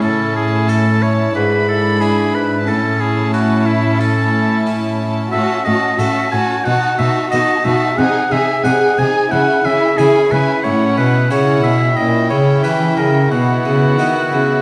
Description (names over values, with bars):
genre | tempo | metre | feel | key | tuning
classical, baroque-style concerto movement with solo episodes | 90 BPM | 4/4 | straight | unclear | A4 = 440 Hz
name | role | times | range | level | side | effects
clear oboe | melody | 0.0-14.6 s | E4 to G#5 | -20 LUFS | equal | none
rich chamber violin section | melody | 0.0-14.6 s | F#5 to B5 | -29 LUFS | equal | none
rich chamber violin section | second line | 0.0-14.6 s | E4 to G#4 | -23 LUFS | equal | none
harpsichord | accompaniment | 0.0-14.6 s | G#2 to A4 | -23 LUFS | equal | none
rich chamber viola section | accompaniment | 0.0-14.6 s | B3 to D#4 | -26 LUFS | equal | none
rich chamber cello section | bass | 0.0-14.6 s | G#2 to E3 | -20 LUFS | equal | none
room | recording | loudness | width
moderate recital hall reverb, RT60 1.4 s | dark, warm production | -15 LUFS | mono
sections
0.0-14.6 A section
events
none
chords
0.0 A; 1.4 E7/G#; 2.7 A; 5.3 F#m/A; 6.7 B7; 8.0 G#/B#; 9.3 C#m; 10.6 F#m7/A; 12.0 A#dim7; 13.3 Bsus4